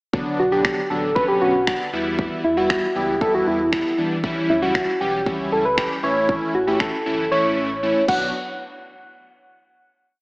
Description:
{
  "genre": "dance-pop",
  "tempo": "117 BPM",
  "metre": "4/4",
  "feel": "straight",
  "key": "B minor",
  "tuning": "A4 = 440 Hz",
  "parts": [
    { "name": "big bright polysynth", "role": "accompaniment", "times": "0.1-8.3 s", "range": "D3 to G4", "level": "-24 LUFS", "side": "equal", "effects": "chorus, sidechain pumping" },
    { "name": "pop drum kit", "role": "drums", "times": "0.1-8.2 s", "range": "crash cymbal, finger snaps, kick drum", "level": "-25 LUFS", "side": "equal", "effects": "none" },
    { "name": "soft struck synth lead", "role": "melody", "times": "0.4-8.3 s", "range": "E4 to F#5", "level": "-20 LUFS", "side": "equal", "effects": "chorus, phaser, diffuse ambient delay" },
    { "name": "sub bass with octave", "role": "bass", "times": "0.4-8.3 s", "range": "F#1 to E3", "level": "-34 LUFS", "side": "equal", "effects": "sidechain pumping" }
  ],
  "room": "wet lush hall reverb, RT60 2.0 s",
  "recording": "dreamy mix soaked in reverb, AM radio sound",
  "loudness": "-18 LUFS",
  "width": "side -27 dB against mid",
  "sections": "0.1-8.3 verse; 8.3-10.2 final hit",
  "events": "silent gap 7.3-8.3",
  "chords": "0.1 Bm; 1.9 Em; 4.2 C#dim; 6.0 A; 8.1 Bm; 8.3 N.C."
}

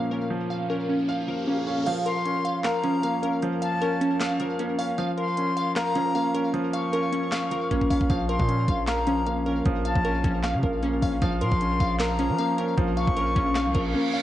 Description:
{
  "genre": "hip hop, trap",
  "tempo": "154 BPM",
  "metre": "4/4",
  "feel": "half-time",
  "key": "Bb minor",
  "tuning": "A4 = 441 Hz",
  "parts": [
    { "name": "warm baby grand piano", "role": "accompaniment", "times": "0.0-14.2 s", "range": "F3 to F5", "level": "-28 LUFS", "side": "right 1 dB", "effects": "low-pass filter" },
    { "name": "dark analog pad", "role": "sustained chords", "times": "0.0-1.8 s", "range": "Bb2 to F4", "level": "-38 LUFS", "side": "left 1 dB", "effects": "chorus" },
    { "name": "glassy wavetable pluck", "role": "arpeggios", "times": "0.0-14.2 s", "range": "Db4 to F5", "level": "-28 LUFS", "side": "equal", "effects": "chorus, low-pass filter, digital delay" },
    { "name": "riser and reverse cymbal", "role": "sound effects", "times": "0.0-1.9, 13.7-14.2 s", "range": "none", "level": "-36 LUFS", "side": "equal", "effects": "none" },
    { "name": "trap drum kit", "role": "drums", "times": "1.9-13.8 s", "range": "crash cymbal, handclaps, hi-hat, kick drum, snare drum", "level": "-28 LUFS", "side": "equal", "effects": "none" },
    { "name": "bright reedy silver concert flute", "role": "second line", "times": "2.1-13.9 s", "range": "A5 to Db6", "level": "-29 LUFS", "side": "left 3 dB", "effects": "digital delay" },
    { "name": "distorted 808-style bass", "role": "bass", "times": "8.1-13.9 s", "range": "Bb1 to F3", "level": "-28 LUFS", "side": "equal", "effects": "distortion" }
  ],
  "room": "light reverb",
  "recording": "worn, warbling old tape, cassette tape, vinyl crackle, warbly pitch drift, nothing above 10.7 kHz",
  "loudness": "-22 LUFS",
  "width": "side -13 dB against mid",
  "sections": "0.0-1.9 A section; 1.9-14.2 B section",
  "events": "riser 0.0-1.9; kick muted 1.9-8.1; drum fill 7.7-8.1; reverse cymbal 13.7-14.2; silent gap 13.9",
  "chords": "0.0 Bbm"
}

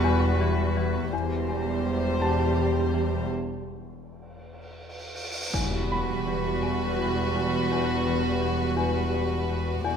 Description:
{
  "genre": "cinematic, suspense film score",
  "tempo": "83 BPM",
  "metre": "3/4",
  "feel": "straight",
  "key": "E minor",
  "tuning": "A4 = 440 Hz",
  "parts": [
    { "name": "warm symphonic violin section", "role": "melody", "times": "0.0-10.0 s", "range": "B4 to D5", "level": "-33 LUFS", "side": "left 3 dB", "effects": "none" },
    { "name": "dark symphonic viola section", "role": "accompaniment", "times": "0.0-10.0 s", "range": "G3 to G4", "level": "-31 LUFS", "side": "equal", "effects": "none" },
    { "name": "marimba with medium hard mallets", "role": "riff", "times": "0.0-10.0 s", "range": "E2 to E3", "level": "-30 LUFS", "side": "left 4 dB", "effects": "none" },
    { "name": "dark symphonic double bass section", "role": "bass", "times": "0.0-10.0 s", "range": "E1", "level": "-32 LUFS", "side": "right 3 dB", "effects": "none" },
    { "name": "warm symphonic cello section", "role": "bass", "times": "0.0-10.0 s", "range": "E2", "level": "-30 LUFS", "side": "right 2 dB", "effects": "none" },
    { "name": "bright grand piano", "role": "texture", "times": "0.0-9.9 s", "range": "A5 to E6", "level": "-37 LUFS", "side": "right 2 dB", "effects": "none" },
    { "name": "cymbal swell and impact", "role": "sound effects", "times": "4.7-7.7 s", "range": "none", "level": "-33 LUFS", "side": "equal", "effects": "none" },
    { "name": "warm chamber violin section", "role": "second line", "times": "5.5-10.0 s", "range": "F#4", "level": "-31 LUFS", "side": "equal", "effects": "none" }
  ],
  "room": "moderate recital hall reverb, RT60 1.6 s",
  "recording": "none",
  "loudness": "-24 LUFS",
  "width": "side -7 dB against mid",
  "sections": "0.0-5.5 A section; 5.5-10.0 B section",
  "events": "break 3.3-5.5; cymbal swell 4.7-5.5; impact 5.5-7.7",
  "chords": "0.0 Emadd9; 1.1 C/E"
}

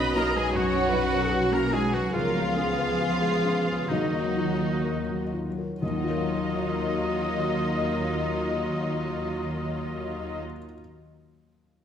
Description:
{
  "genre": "cinematic, emotional film score for orchestra",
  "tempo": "60-80 BPM",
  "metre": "4/4",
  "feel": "rubato",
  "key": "Eb minor",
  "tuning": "A4 = 440 Hz",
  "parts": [
    { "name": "warm studio violin section", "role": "melody", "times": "0.0-10.4 s", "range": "Eb5 to B5", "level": "-35 LUFS", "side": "left 4 dB", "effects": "none" },
    { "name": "clear oboe", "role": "second line", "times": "0.0-10.4 s", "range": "Eb4 to Eb5", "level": "-34 LUFS", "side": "right 1 dB", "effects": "none" },
    { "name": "rich studio violin section", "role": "second line", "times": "0.0-10.4 s", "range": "Eb4 to B4", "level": "-36 LUFS", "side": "left 2 dB", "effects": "none" },
    { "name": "small flute group", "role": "second line", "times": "0.0-10.4 s", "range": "Eb5 to B5", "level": "-35 LUFS", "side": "left 2 dB", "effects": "none" },
    { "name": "felt-muted upright piano", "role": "accompaniment", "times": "0.0-11.8 s", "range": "B1 to F5", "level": "-33 LUFS", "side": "left 1 dB", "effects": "none" },
    { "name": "warm studio viola section", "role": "accompaniment", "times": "0.0-10.4 s", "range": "Gb3 to D#5", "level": "-32 LUFS", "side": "right 2 dB", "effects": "none" },
    { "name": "mellow French horn section", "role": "sustained chords", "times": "0.0-10.4 s", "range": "Gb3 to Ab4", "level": "-32 LUFS", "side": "left 2 dB", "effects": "none" },
    { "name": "concert harp", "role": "arpeggios", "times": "0.0-10.8 s", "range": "B2 to F5", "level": "-35 LUFS", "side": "left 7 dB", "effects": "none" },
    { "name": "warm studio cello section", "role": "bass", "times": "0.0-10.4 s", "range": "Eb3 to B3", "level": "-34 LUFS", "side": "right 2 dB", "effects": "none" },
    { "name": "warm studio double bass section", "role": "bass", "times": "0.0-10.4 s", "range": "B1 to Eb2", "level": "-34 LUFS", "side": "right 2 dB", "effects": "none" },
    { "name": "timpani", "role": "percussion", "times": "3.9-10.4 s", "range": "Eb3", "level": "-38 LUFS", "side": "left 2 dB", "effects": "none" }
  ],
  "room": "wet scoring stage reverb, RT60 1.6 s",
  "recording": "none",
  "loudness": "-24 LUFS",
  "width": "side -8 dB against mid",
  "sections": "0.0-5.8 A section; 5.8-9.6 B section",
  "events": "slowing down 0.0-5.8",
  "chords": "0.0 Badd9; 2.1 Db7; 3.9 Ebmadd9"
}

